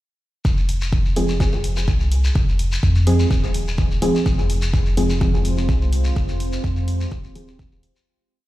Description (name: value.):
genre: dub techno.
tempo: 126 BPM.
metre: 4/4.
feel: swing 53% on 16ths.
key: F minor.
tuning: A4 = 440 Hz.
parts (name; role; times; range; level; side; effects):
round analog bass; bass; 0.5-7.9 s; Eb1 to F2; -20 LUFS; equal; sidechain pumping.
electronic kick drum; drums; 0.5-7.7 s; none; -20 LUFS; equal; none.
shekere; percussion; 0.5-8.0 s; none; -33 LUFS; left 3 dB; none.
electronic hi-hat; drums; 0.7-7.9 s; none; -34 LUFS; left 1 dB; none.
filtered dub chord stab; stabs; 1.2-7.5 s; F3 to Ab4; -23 LUFS; right 1 dB; chorus, phaser, sidechain pumping, dub echo.
deep dark ambient pad; sustained chords; 5.1-8.1 s; Ab3 to C5; -30 LUFS; right 2 dB; chorus, built-in reverb, sidechain pumping.
room: light reverb.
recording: played on a big sound system in a bare room, large studio reverb.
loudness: -17 LUFS.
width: side -16 dB against mid.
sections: 0.5-8.1 groove.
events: filter sweep on synth stab 0.5-8.1; fade-out 5.5-8.1.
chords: 0.5 Fm.